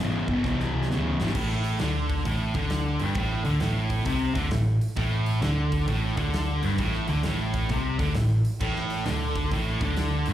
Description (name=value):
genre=blues rock power trio and southern rock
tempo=132 BPM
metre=4/4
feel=swing 65% on 8ths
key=A minor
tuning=A4 = 440 Hz
part: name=fuzz guitar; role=riff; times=0.0-10.3 s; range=E2 to D3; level=-26 LUFS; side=equal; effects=distortion, slapback echo
part: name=vintage muted picked electric bass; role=bass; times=0.0-10.3 s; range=G1 to D2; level=-28 LUFS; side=equal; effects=none
part: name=big rock drum kit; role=drums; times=0.3-10.3 s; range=crash cymbal, hi-hat, kick drum, snare drum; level=-32 LUFS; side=equal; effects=none
room=light reverb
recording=live gig heard through the venue's PA, club reverb, faint mains hum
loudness=-23 LUFS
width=side -12 dB against mid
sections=0.0-1.3 A section; 1.3-10.3 B section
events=drum fill 0.4-1.3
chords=0.0 E7; 1.3 Am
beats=0.44 0.89 | 1.35 1.80 2.26 2.71 | 3.17 3.62 4.08 4.53 | 4.99 5.44 5.89 6.35 | 6.80 7.25 7.71 8.16 | 8.62 9.07 9.52 9.98